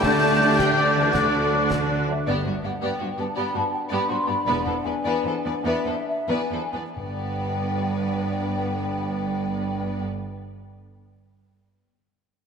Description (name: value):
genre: cinematic, heroic adventure film score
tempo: 87-111 BPM (dotted quarters)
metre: 12/8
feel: straight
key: G major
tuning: A4 = 438 Hz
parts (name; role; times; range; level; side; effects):
- rich symphonic violin section; melody; 0.0-10.0 s; C5 to A5; -33 LUFS; left 5 dB; none
- clear oboe; second line; 0.0-2.0 s; D5; -27 LUFS; left 1 dB; none
- mellow hollow large flute ensemble; second line; 0.0-10.0 s; D5 to G6; -27 LUFS; left 1 dB; none
- rich studio violin section; second line; 0.0-10.0 s; F#4 to D5; -32 LUFS; left 3 dB; none
- warm clarinet; second line; 0.0-2.0 s; A3; -34 LUFS; right 4 dB; none
- rich symphonic viola section; accompaniment; 0.0-10.0 s; A3 to D4; -30 LUFS; right 2 dB; none
- warm French horn section; sustained chords; 0.0-10.0 s; D3 to D4; -31 LUFS; left 4 dB; none
- concert harp; arpeggios; 0.0-4.4 s; D3 to A4; -32 LUFS; left 8 dB; none
- rich symphonic cello section; bass; 0.0-10.0 s; E2 to D3; -30 LUFS; right 4 dB; none
- rich symphonic double bass section; bass; 0.0-10.0 s; E1 to D2; -31 LUFS; right 3 dB; none
- concert snare drum and concert bass drum; drums; 0.0-1.9 s; none; -33 LUFS; right 1 dB; none
- dark trombone section; sustained chords; 0.4-2.2 s; F#3 to D4; -35 LUFS; right 4 dB; none
- timpani; percussion; 1.1-1.7, 7.0-10.0 s; G2 to D3; -40 LUFS; equal; none
room: wet concert hall reverb, RT60 2.2 s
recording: none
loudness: -21 LUFS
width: side -6 dB against mid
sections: 0.0-2.3 A section; 2.3-7.0 B section; 7.0-9.7 C section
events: slowing down 3.0-7.0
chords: 0.0 Dsus4; 1.1 D; 2.3 G; 4.5 E7; 7.0 G